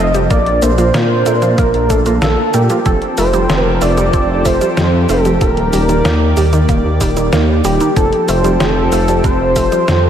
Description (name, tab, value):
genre	synthwave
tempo	94 BPM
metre	4/4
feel	straight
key	F mixolydian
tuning	A4 = 439 Hz
part	wide unison lead	melody	0.0-10.1 s	G4 to Eb5	-16 LUFS	right 1 dB	tape echo
part	lush unison pad	sustained chords	0.0-10.1 s	Eb3 to D5	-19 LUFS	equal	chorus, sidechain pumping
part	analog pluck	arpeggios	0.0-10.0 s	Eb3 to C4	-20 LUFS	right 2 dB	chorus, diffuse ambient delay
part	mellow electric guitar	riff	0.0-10.0 s	Eb3 to Bb4	-24 LUFS	right 2 dB	none
part	dark detuned saw bass	bass	0.0-10.1 s	Eb1 to Bb2	-15 LUFS	equal	tube saturation, sidechain pumping
part	detuned 8-bit digital drum machine	drums	0.1-10.0 s	cabasa, hi-hat, snare drum	-21 LUFS	equal	none
part	electronic kick drum	drums	0.3-9.7 s	none	-16 LUFS	equal	none
room	moderate lush hall reverb, RT60 2.0 s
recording	dreamy mix soaked in reverb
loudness	-11 LUFS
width	side -9 dB against mid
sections	0.0-10.1 A section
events	none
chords	0.3 Bbmaj7; 2.9 Fadd9; 5.4 Ebmaj7; 8.0 Fadd9